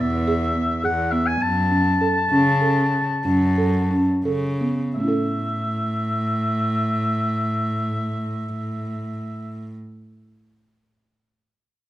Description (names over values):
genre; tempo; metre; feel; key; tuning
contemporary instrumental, chamber music in an uneven meter; 164-215 BPM (eighths); 11/8; straight; A major; A4 = 441 Hz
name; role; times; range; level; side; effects
warm oboe; melody; 0.0-9.7 s; E5 to A5; -24 LUFS; left 2 dB; none
buzzing marimba with soft mallets; arpeggios; 0.0-9.9 s; A3 to A4; -23 LUFS; right 2 dB; none
warm cello; bass; 0.0-9.7 s; E2 to C#3; -24 LUFS; equal; none
room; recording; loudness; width
moderate recital hall reverb, RT60 1.4 s; none; -19 LUFS; side -14 dB against mid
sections
0.0-5.0 A section; 5.0-9.0 B section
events
slowing down 0.0-5.0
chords
0.0 E; 1.4 F#m; 5.0 A